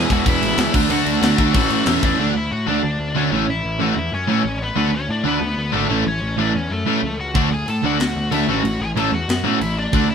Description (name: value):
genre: punk rock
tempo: 186 BPM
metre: 4/4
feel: straight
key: A major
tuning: A4 = 439 Hz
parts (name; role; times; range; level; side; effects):
- high-gain lead guitar; melody; 0.0-10.1 s; A3 to A5; -24 LUFS; left 3 dB; distortion
- distorted electric guitar; riff; 0.0-10.1 s; E2 to D4; -23 LUFS; left 9 dB; overdrive
- overdriven semi-hollow guitar; riff; 0.0-10.1 s; A2 to F#4; -22 LUFS; right 7 dB; none
- fuzz picked electric bass; bass; 0.0-10.1 s; E1 to A2; -24 LUFS; left 1 dB; overdrive
- tight metal drum kit; drums; 0.1-2.1, 7.3-10.0 s; crash cymbal, kick drum, snare drum; -22 LUFS; left 1 dB; none
room: moderate studio reverb, RT60 0.8 s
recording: band playing live in one room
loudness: -17 LUFS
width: side -7 dB against mid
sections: 0.0-2.2 A section; 2.2-10.1 B section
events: half time 2.2-10.1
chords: 0.0 E; 0.7 D; 1.5 A; 2.2 D; 3.3 A; 4.8 D; 5.9 A; 7.3 D; 8.5 A